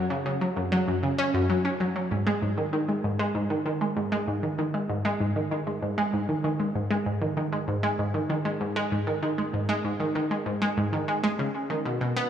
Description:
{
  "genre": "ambient",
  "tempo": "97 BPM",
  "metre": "4/4",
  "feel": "straight",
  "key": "G# minor",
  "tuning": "A4 = 440 Hz",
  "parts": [
    { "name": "analog pluck", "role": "solo", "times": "0.0-12.3 s", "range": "Gb2 to Db4", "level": "-25 LUFS", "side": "equal", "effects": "chorus, tape echo" }
  ],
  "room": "wet plate reverb, RT60 2.9 s",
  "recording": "dreamy mix soaked in reverb, small room ambience",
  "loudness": "-25 LUFS",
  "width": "side -9 dB against mid",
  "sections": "0.0-2.1 A section; 2.1-12.3 B section",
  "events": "none",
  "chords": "none",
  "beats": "0.26 0.88 1.49 | 2.11 2.73 3.35 3.97 | 4.59 5.21 5.82 6.44 | 7.06 7.68 8.30 8.92 | 9.54 10.15 10.77 11.39 | 12.01"
}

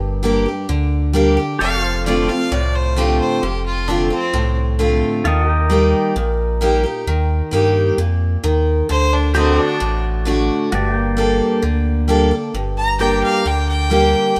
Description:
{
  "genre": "country",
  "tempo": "132 BPM",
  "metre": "4/4",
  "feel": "straight",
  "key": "G minor",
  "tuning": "A4 = 439 Hz",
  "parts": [
    { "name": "picked steel-string acoustic guitar", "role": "accompaniment", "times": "0.0-14.4 s", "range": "F2 to A4", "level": "-20 LUFS", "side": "equal", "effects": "none" },
    { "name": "pedal steel guitar", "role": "sustained chords", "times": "0.0-14.4 s", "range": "Bb3 to Eb5", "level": "-26 LUFS", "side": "equal", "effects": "none" },
    { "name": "warm sub bass", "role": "bass", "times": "0.0-14.4 s", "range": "F1 to G2", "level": "-21 LUFS", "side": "equal", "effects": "none" },
    { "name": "clear fiddle", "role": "second line", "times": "1.6-4.6, 8.9-10.0, 12.8-14.4 s", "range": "C4 to Bb5", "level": "-24 LUFS", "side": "equal", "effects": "none" }
  ],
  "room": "light reverb",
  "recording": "none",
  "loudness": "-17 LUFS",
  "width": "mono",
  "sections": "0.0-12.5 A section; 12.5-14.4 B section",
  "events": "fiddle solo 12.5-14.4",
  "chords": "0.0 Gm; 1.6 F6; 5.3 Eb; 8.9 D; 10.7 Gmadd9",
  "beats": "0.24 0.69 1.15 | 1.60 2.06 2.52 2.97 | 3.43 3.88 4.34 4.80 | 5.25 5.71 6.16 6.62 | 7.08 7.53 7.99 8.44 | 8.90 9.35 9.81 10.27 | 10.72 11.18 11.63 12.09 | 12.54 13.00 13.46 13.91 | 14.37"
}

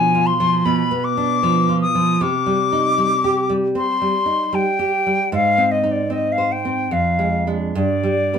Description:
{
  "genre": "romantic duo for flute and classical guitar",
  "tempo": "67-79 BPM",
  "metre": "4/4",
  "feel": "rubato",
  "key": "C minor",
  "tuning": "A4 = 438 Hz",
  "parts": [
    { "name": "silver concert flute", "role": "melody", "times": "0.0-8.4 s", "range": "D5 to Eb6", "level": "-18 LUFS", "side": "left 4 dB", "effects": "none" },
    { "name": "nylon-string guitar", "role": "accompaniment", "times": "0.0-8.4 s", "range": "F2 to C5", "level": "-19 LUFS", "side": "right 2 dB", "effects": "none" }
  ],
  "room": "wet small room ambience, RT60 0.5 s",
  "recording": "band playing live in one room",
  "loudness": "-16 LUFS",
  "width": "side -7 dB against mid",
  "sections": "0.0-8.4 A section",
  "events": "none",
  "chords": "0.0 Bdim; 2.2 Cm; 5.3 Ab; 6.9 Ddim/F; 7.8 G5",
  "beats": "0.66 1.43 | 2.20 2.99 3.76 4.54 | 5.32 6.12 6.94 7.77"
}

